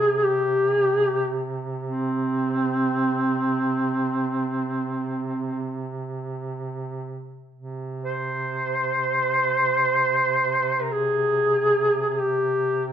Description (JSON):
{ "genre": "caucasian folk, Caucasian lament", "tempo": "free time", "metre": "none", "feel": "none", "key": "unclear", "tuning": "A4 = 439 Hz", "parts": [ { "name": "warm duduk", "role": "melody", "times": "0.0-12.9 s", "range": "C4 to C5", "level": "-21 LUFS", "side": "equal", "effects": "none" }, { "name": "warm duduk", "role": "drone", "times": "0.0-12.9 s", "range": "C3", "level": "-31 LUFS", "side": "right 3 dB", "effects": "none" } ], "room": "moderate recital hall reverb, RT60 1.4 s", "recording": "minimal, uncompressed stereo recording", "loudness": "-21 LUFS", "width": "side -9 dB against mid", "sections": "0.0-7.6 A section; 7.6-12.9 A section", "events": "none", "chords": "none" }